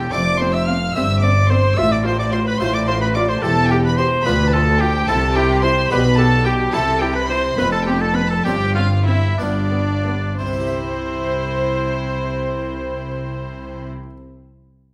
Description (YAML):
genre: classical, baroque-style concerto movement with solo episodes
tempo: 58-73 BPM (dotted quarters)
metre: 6/8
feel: straight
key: C major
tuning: A4 = 441 Hz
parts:
  - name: rich chamber violin section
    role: melody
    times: 0.0-13.9 s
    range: C5 to F6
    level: -28 LUFS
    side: equal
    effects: none
  - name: warm oboe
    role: melody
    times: 0.0-13.9 s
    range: D4 to F5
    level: -25 LUFS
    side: equal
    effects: none
  - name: rich chamber violin section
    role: second line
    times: 0.0-13.9 s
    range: C4 to F5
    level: -28 LUFS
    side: equal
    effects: none
  - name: rich chamber cello section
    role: bass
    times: 0.0-13.9 s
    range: D2 to C3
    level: -24 LUFS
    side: equal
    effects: none
  - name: rich chamber double bass section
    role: bass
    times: 0.0-13.9 s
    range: E1 to D2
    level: -25 LUFS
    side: equal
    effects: none
  - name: dark chamber viola section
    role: accompaniment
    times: 0.1-13.9 s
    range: B3 to G4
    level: -30 LUFS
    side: equal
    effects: none
  - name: harpsichord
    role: accompaniment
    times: 0.1-14.2 s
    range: D2 to E5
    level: -32 LUFS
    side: equal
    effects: none
room: wet recital hall reverb, RT60 1.3 s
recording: none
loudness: -18 LUFS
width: mono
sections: 0.0-10.4 A section; 10.4-14.4 B section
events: slowing down 5.9-10.4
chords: 0.1 F; 1.0 C5/G; 1.8 F/A; 3.4 C/E; 4.3 Bdim/D; 5.1 C6; 5.9 G/B; 6.7 C; 7.6 F5; 8.5 G7sus4; 9.4 G7; 10.4 C